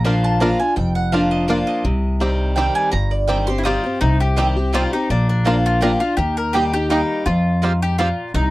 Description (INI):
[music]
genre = bluegrass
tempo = 166 BPM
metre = 3/4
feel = swing 54% on 8ths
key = C minor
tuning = A4 = 440 Hz
[part]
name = picked acoustic archtop guitar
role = accompaniment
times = 0.0-8.5 s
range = F2 to G4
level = -21 LUFS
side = left 1 dB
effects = none
[part]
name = mandolin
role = stabs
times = 0.0-8.1 s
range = Ab3 to Eb6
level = -23 LUFS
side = right 3 dB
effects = none
[part]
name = upright bass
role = bass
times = 0.0-8.5 s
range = F1 to F2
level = -20 LUFS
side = equal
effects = none
[part]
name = bluegrass banjo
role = melody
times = 0.1-8.1 s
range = C4 to Bb4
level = -23 LUFS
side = right 2 dB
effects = none
[part]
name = mandolin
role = melody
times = 3.6-8.5 s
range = D4 to Bb4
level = -22 LUFS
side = left 2 dB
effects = none
[sound]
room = little or no reverb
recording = dry, close 1970s-style studio recording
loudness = -16 LUFS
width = side -18 dB against mid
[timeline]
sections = 0.0-4.0 A section; 4.0-8.5 B section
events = mandolin solo 0.0-4.0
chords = 0.0 Bb; 1.8 Cm; 5.1 Bb; 6.2 Eb; 7.3 Fmadd9